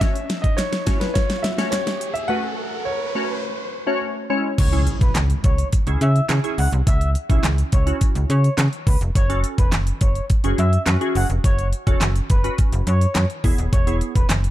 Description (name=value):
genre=dance-pop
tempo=105 BPM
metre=4/4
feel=straight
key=F# minor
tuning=A4 = 439 Hz
part: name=warm concert grand piano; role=melody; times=0.0-4.0 s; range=B4 to F#5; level=-26 LUFS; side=left 1 dB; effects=ping-pong delay
part: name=glassy wavetable pluck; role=accompaniment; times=0.0-14.5 s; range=G#3 to C#5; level=-26 LUFS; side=equal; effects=chorus, sidechain pumping
part: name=pop drum kit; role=drums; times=0.0-14.5 s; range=crash cymbal, handclaps, hi-hat, kick drum, snare drum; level=-20 LUFS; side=equal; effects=none
part: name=riser and impact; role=sound effects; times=0.0-6.9 s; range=none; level=-30 LUFS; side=equal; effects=none
part: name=group handclap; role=percussion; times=0.6-14.4 s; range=none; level=-33 LUFS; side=right 4 dB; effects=none
part: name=expressive synth lead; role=melody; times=4.6-14.3 s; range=B4 to F#5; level=-28 LUFS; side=equal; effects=chorus, sidechain pumping, ping-pong delay
part: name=slap-like FM bass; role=bass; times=4.6-14.5 s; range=D#1 to C#3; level=-20 LUFS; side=equal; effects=sidechain pumping
room=little or no reverb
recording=dark, warm production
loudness=-17 LUFS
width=side -14 dB against mid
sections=0.0-4.6 A section; 4.6-14.5 B section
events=build-up 0.0-4.6; drum fill 0.0-2.3; riser 0.0-4.6; break 2.3-4.6; drop 4.6-14.5; impact 4.6-6.9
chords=0.0 F#m; 4.3 C#m; 9.2 F#m; 13.4 E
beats=| 0.01 0.58 1.16 1.73 | 2.30 2.87 3.44 4.01 | 4.58 5.16 5.73 6.30 | 6.87 7.44 8.01 8.58 | 9.15 9.73 10.30 10.87 | 11.44 12.01 12.58 13.15 | 13.73 14.30